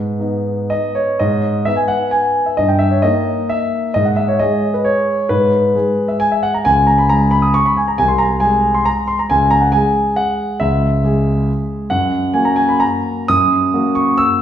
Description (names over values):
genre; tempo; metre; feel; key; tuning
classical, piano waltz; 134 BPM; 3/4; uneven beats, rubato; G# minor; A4 = 438 Hz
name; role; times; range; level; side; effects
warm grand piano; solo; 0.0-14.4 s; B#1 to E6; -13 LUFS; equal; none
room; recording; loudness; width
wet recital hall reverb, RT60 1.4 s; heard from further back in the room; -13 LUFS; side -10 dB against mid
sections
0.0-1.2 A section; 1.2-14.4 B section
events
none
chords
0.0 G#m; 2.6 D#/G; 3.9 N.C.; 6.6 C#5; 8.0 G#/B#; 9.3 C#m; 11.9 F#